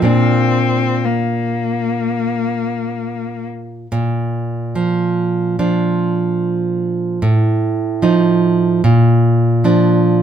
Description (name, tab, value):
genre	romantic duo for cello and classical guitar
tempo	61-76 BPM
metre	4/4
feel	rubato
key	Bb major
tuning	A4 = 441 Hz
part	rich cello	melody	0.0-3.5 s	Bb3 to C4	-19 LUFS	left 5 dB	none
part	nylon-string guitar	accompaniment	0.0-10.2 s	A2 to Eb4	-14 LUFS	right 2 dB	none
room	moderate studio reverb, RT60 0.7 s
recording	band playing live in one room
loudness	-14 LUFS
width	side -9 dB against mid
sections	0.0-3.9 A section; 3.9-10.2 B section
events	none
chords	0.1 Bb; 7.2 F7/A; 8.9 Bb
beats	| 0.06 1.04 2.01 2.98 | 3.92 4.75 5.58 6.42 | 7.23 8.03 8.85 9.65